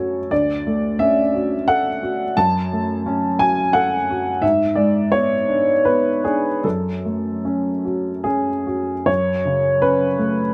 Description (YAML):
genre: neoclassical minimalist piano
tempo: 68-90 BPM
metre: 3/4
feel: rubato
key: F# minor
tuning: A4 = 441 Hz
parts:
  - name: dark upright piano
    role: solo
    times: 0.0-10.5 s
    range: D2 to A5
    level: -19 LUFS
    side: equal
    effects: none
room: light reverb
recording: close, detailed microphones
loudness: -19 LUFS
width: mono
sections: 0.0-9.1 A section; 9.1-10.5 B section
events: none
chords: 0.3 Dmaj7; 2.4 F#m; 4.4 G#dim; 6.6 F#m